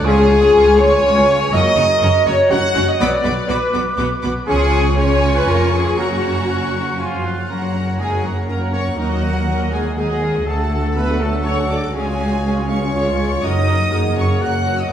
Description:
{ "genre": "cinematic, heroic adventure film score", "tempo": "121 BPM", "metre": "3/4", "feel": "straight", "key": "F# major", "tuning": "A4 = 442 Hz", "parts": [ { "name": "warm symphonic violin section", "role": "melody", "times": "0.0-14.9 s", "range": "F#4 to A#5", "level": "-29 LUFS", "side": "left 2 dB", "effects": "none" }, { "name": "dark clarinet", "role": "second line", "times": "0.0-14.6 s", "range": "C#4 to A#4", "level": "-29 LUFS", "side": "left 3 dB", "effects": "none" }, { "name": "mellow hollow concert flute", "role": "second line", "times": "0.0-14.9 s", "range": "E#5 to D6", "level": "-29 LUFS", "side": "left 2 dB", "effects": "none" }, { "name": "warm symphonic violin section", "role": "second line", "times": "0.0-14.9 s", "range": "E#5 to F#6", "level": "-28 LUFS", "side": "equal", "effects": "none" }, { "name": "rich symphonic viola section", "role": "accompaniment", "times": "0.0-14.9 s", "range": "G#3 to D#5", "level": "-26 LUFS", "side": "right 1 dB", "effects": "none" }, { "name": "bright trombone section", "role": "sustained chords", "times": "0.0-14.9 s", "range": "E#3 to C#4", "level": "-28 LUFS", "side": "right 3 dB", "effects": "none" }, { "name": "mellow French horn section", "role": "sustained chords", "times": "0.0-14.9 s", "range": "E#3 to D#5", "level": "-20 LUFS", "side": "left 2 dB", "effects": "none" }, { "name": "clear trumpet section", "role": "stabs", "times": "0.0-14.9 s", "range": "E#4 to F#5", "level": "-23 LUFS", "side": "right 1 dB", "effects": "none" }, { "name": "dark symphonic cello section", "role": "bass", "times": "0.0-14.8 s", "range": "C#2 to C#3", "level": "-22 LUFS", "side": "right 1 dB", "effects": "none" }, { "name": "rich symphonic double bass section", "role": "bass", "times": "0.0-14.8 s", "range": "E#1 to D#2", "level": "-22 LUFS", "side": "right 1 dB", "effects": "none" }, { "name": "mellow cor anglais", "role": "second line", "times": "0.1-14.6 s", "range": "A4 to G#5", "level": "-30 LUFS", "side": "right 2 dB", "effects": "none" } ], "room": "wet scoring stage reverb, RT60 2.0 s", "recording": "none", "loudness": "-14 LUFS", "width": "side -9 dB against mid", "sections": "0.0-7.5 A section; 7.5-14.9 B section", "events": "none", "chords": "0.0 C#; 1.5 F#; 3.0 Bm; 4.5 C#; 6.0 F#; 9.0 D#m; 10.5 D; 11.9 C#; 13.4 F#", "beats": "| 0.04 0.53 1.03 | 1.52 2.01 2.50 | 2.99 3.49 3.98 | 4.48 4.97 5.47 | 5.98 6.49 6.99 | 7.50 7.99 8.49 | 8.98 9.48 9.97 | 10.46 10.96 11.45 | 11.95 12.44 12.94 | 13.43 13.92 14.41 | 14.90" }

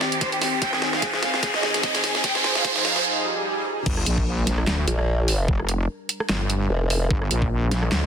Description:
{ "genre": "heavy wobble dubstep", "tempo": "148 BPM", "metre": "4/4", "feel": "swing 55% on 16ths, half-time", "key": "G phrygian", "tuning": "A4 = 440 Hz", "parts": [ { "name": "clear symphonic violin section", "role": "melody", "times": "0.0-3.0 s", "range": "G4 to G5", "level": "-26 LUFS", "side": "equal", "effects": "ping-pong delay" }, { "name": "lush unison pad", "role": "sustained chords", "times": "0.0-8.1 s", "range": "Eb3 to Bb4", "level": "-31 LUFS", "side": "right 1 dB", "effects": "chorus, sidechain pumping" }, { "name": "dubstep drum kit", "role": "drums", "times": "0.0-8.0 s", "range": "crash cymbal, handclaps, hi-hat, rim click, snare drum", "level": "-26 LUFS", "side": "equal", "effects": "high-pass filter on snare, high-pass filter on hats, high-pass filter on cymbals" }, { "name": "riser, swell and sub drop", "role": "sound effects", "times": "0.0-5.5 s", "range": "none", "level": "-26 LUFS", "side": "right 2 dB", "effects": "none" }, { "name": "electronic kick drum", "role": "drums", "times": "0.2-7.5 s", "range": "none", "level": "-25 LUFS", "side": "equal", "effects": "none" }, { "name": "wobble bass", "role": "bass", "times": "3.9-8.1 s", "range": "F1 to D2", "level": "-23 LUFS", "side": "equal", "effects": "chorus, overdrive" }, { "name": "formant-sweep wobble bass", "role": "bass", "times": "4.9-7.1 s", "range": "F1 to Bb1", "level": "-21 LUFS", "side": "equal", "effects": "chorus, overdrive" } ], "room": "moderate lush hall reverb, RT60 1.7 s", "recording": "dense, heavily limited modern master, high-pass filter", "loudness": "-20 LUFS", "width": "side -8 dB against mid", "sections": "0.0-3.9 A section; 3.9-8.1 B section", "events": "build-up 0.0-3.9; drum fill 0.0-3.1; riser 0.0-3.1; filter sweep on analog synth pad 0.0-3.9; break 3.1-3.9; swell 3.1-3.9; drop 3.9-8.1; impact 3.9-5.5", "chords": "0.0 Cm; 0.6 Ab; 2.2 Fm7; 3.9 Gm", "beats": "0.21 | 0.62 1.02 1.43 1.83 | 2.24 2.65 3.05 3.46 | 3.86 4.27 4.67 5.08 | 5.48 5.89 6.29 6.70 | 7.11 7.51 7.92" }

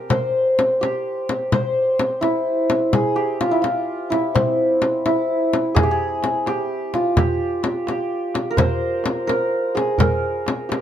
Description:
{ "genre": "Persian modal ensemble", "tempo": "85 BPM (dotted quarters)", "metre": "6/8", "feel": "straight", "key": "C dastgah homayun", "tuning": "A4 = 440 Hz", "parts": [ { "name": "santur", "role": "melody", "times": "0.0-10.8 s", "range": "C4 to C5", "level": "-19 LUFS", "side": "equal", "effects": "plate reverb" }, { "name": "frame drum", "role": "percussion", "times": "0.1-10.8 s", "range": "none", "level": "-22 LUFS", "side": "left 3 dB", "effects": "none" }, { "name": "tombak", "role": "percussion", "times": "5.8-10.8 s", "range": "none", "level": "-24 LUFS", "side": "right 3 dB", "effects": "none" } ], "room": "light reverb", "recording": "dark, warm production", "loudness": "-18 LUFS", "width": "side -10 dB against mid", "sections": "0.0-5.8 A section; 5.8-10.8 A section", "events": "none", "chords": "none", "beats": "| 0.10 0.81 | 1.52 2.23 | 2.93 3.64 | 4.35 5.06 | 5.76 6.47 | 7.18 7.88 | 8.59 9.30 | 10.00 10.71" }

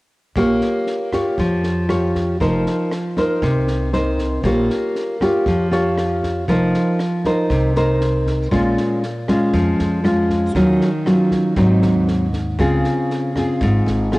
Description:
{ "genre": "bossa nova", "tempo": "118 BPM", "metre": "4/4", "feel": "straight", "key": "Bb dorian, Bb minor from 8.5 s", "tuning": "A4 = 440 Hz", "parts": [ { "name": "nylon-string guitar", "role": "accompaniment", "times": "0.4-14.2 s", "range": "Ab2 to Db5", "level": "-16 LUFS", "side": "equal", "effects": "cassette tape" }, { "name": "upright bass", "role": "bass", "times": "0.4-14.2 s", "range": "F1 to F2", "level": "-22 LUFS", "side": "equal", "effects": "none" }, { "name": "compact cocktail drum kit", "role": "drums", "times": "0.4-14.2 s", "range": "kick drum, rim click, snare drum", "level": "-30 LUFS", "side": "equal", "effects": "cassette tape" } ], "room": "moderate lush hall reverb, RT60 2.1 s", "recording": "home recording on cassette", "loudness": "-16 LUFS", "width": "side -21 dB against mid", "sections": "0.4-8.5 A section; 8.5-14.2 B section", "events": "none", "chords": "0.4 Bbm6; 2.4 F7sus4; 4.4 Bbm6; 6.5 F7sus4; 8.5 Bbm7; 10.6 Ebm9; 11.6 Ab7; 12.6 Dbmaj7", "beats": "| 0.37 0.88 1.39 1.90 | 2.41 2.92 3.42 3.94 | 4.44 4.95 5.46 5.97 | 6.48 6.99 7.50 8.01 | 8.52 9.03 9.54 10.05 | 10.55 11.06 11.57 12.08 | 12.59 13.10 13.61 14.12" }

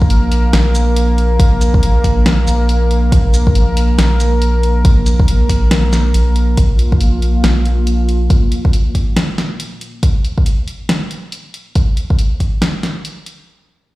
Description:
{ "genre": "deep dubstep", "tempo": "139 BPM", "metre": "4/4", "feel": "swing 61% on 16ths, half-time", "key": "unclear", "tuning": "A4 = 444 Hz", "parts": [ { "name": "dark analog pad", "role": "sustained chords", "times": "0.0-11.8 s", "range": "Bb3 to Bb4", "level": "-20 LUFS", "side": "equal", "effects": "chorus" }, { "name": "soft dub sub bass", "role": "bass", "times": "0.0-8.3 s", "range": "Bb1", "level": "-13 LUFS", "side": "equal", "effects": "none" }, { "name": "electronic kick drum", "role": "drums", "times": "0.0-12.5 s", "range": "none", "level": "-12 LUFS", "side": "equal", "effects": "none" }, { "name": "deep house drum kit", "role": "drums", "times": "0.1-13.4 s", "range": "hi-hat, shaker, snare drum", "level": "-20 LUFS", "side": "equal", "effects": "none" } ], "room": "little or no reverb", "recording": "played on a big sound system in a bare room, stone room reverb", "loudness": "-11 LUFS", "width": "side -18 dB against mid", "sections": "0.0-6.6 A section; 6.6-13.5 B section", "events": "drop 0.0-6.6; filter sweep on analog synth pad 6.6-11.8", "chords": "0.0 Bb5", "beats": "0.10 0.53 0.96 | 1.40 1.83 2.26 2.69 | 3.12 3.55 3.98 4.42 | 4.85 5.28 5.71 6.14 | 6.58 7.01 7.44 7.87 | 8.30 8.73 9.16 9.60 | 10.03 10.46 10.89 11.32 | 11.76 12.19 12.62 13.05" }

